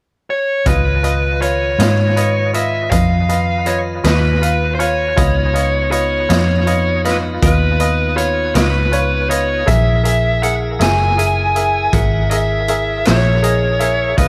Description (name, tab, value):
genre	slow blues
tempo	53 BPM (dotted quarters)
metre	12/8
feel	straight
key	Db mixolydian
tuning	A4 = 439 Hz
part	dark smooth lead guitar	melody	0.3-14.3 s	Cb5 to Ab5	-20 LUFS	equal	overdrive, tape echo
part	bright upright piano	accompaniment	0.7-14.3 s	F4 to Gb5	-24 LUFS	equal	tape echo
part	tonewheel organ	sustained chords	0.7-14.3 s	Eb3 to Cb5	-29 LUFS	equal	slow rotary speaker
part	vintage muted fingered electric bass	bass	0.7-14.3 s	Gb1 to Ab2	-19 LUFS	equal	none
part	raw garage drum kit	drums	0.7-14.3 s	hi-hat, kick drum, snare drum	-22 LUFS	equal	tape echo
room	light reverb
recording	echo-heavy mix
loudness	-15 LUFS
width	mono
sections	0.7-14.3 A section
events	none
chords	0.0 N.C.; 0.7 Db9; 9.7 Gb9